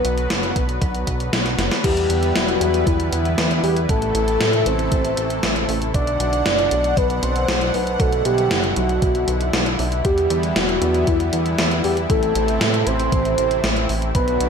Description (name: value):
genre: synthwave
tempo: 117 BPM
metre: 4/4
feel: straight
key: A dorian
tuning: A4 = 439 Hz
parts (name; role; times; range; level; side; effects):
- soft octave-layered synth lead; melody; 0.0-14.5 s; E4 to D5; -21 LUFS; equal; chorus, phaser, cassette tape, ping-pong delay, shimmer reverb
- lush unison pad; sustained chords; 0.0-14.5 s; A2 to F#5; -25 LUFS; equal; chorus, sidechain pumping, shimmer reverb
- chorused synth bass; bass; 0.0-14.5 s; E1 to A2; -23 LUFS; equal; sidechain pumping
- gated 80s digital drum machine; drums; 0.0-14.5 s; crash cymbal, hi-hat, snare drum; -23 LUFS; left 1 dB; gated reverb, gated reverb snare
- electronic kick drum; drums; 0.6-14.3 s; none; -22 LUFS; equal; none
room: moderate recital hall reverb, RT60 1.4 s, digital ambience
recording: none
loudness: -17 LUFS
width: side -6 dB against mid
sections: 0.0-1.8 A section; 1.8-14.5 B section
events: drum fill 1.5-1.8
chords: 0.0 Bm; 1.8 Em7; 3.9 Am; 5.9 Bm; 10.0 Em7; 12.1 Am